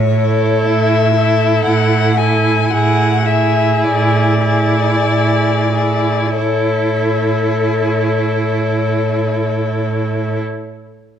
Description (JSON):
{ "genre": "classical, slow romantic movement for string quartet", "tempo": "44-62 BPM", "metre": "3/4", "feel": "rubato", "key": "A major", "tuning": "A4 = 440 Hz", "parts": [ { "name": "rich violin", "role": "melody", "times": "0.0-10.4 s", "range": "C#5 to G#5", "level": "-19 LUFS", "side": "left 9 dB", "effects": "none" }, { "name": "rich cello", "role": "bass", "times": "0.0-10.4 s", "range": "A2", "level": "-17 LUFS", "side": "right 4 dB", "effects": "none" }, { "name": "clear violin", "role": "second line", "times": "0.2-10.4 s", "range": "G#4 to A4", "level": "-20 LUFS", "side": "left 2 dB", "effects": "none" }, { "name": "rich viola", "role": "accompaniment", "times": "0.2-10.4 s", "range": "E4", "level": "-19 LUFS", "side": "right 2 dB", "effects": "none" } ], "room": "moderate recital hall reverb, RT60 1.3 s", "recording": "dark, warm production", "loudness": "-12 LUFS", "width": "side -9 dB against mid", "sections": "0.0-6.4 A section; 6.4-10.1 B section", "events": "slowing down 0.0-6.4", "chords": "0.0 A", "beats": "0.65 1.66 | 2.72 3.84 5.07 | 6.37 7.62 8.90" }